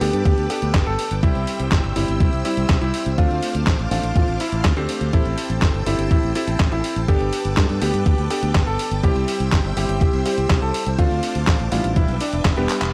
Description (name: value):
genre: italo disco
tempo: 123 BPM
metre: 4/4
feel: straight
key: unclear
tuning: A4 = 442 Hz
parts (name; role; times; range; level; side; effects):
- clear baby grand piano; melody; 0.0-12.8 s; B3 to A4; -28 LUFS; equal; tape echo
- string machine, full ensemble; sustained chords; 0.0-12.9 s; B4 to E6; -34 LUFS; equal; ensemble chorus
- warm electric grand piano; stabs; 0.0-12.9 s; G3 to A4; -30 LUFS; equal; none
- fingered electric bass; bass; 0.0-12.9 s; E1 to G2; -26 LUFS; equal; none
- dusty soul sampler-style drum kit; drums; 0.0-12.9 s; handclaps, hi-hat, snare drum; -28 LUFS; equal; low-pass filter on hats, low-pass filter on snare, low-pass filter on toms, low-pass filter on cymbals
- electronic kick drum; drums; 0.3-12.5 s; none; -21 LUFS; equal; none
room: digital ambience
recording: dry, gritty hardware recording, transformer saturation, vinyl crackle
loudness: -20 LUFS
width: mono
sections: 0.0-12.9 A section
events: drum fill 12.7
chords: 0.0 Gadd9; 1.2 C; 3.2 Dm7; 5.1 Am7; 7.1 Gadd9; 9.0 C; 11.0 Dm7; 12.0 Em7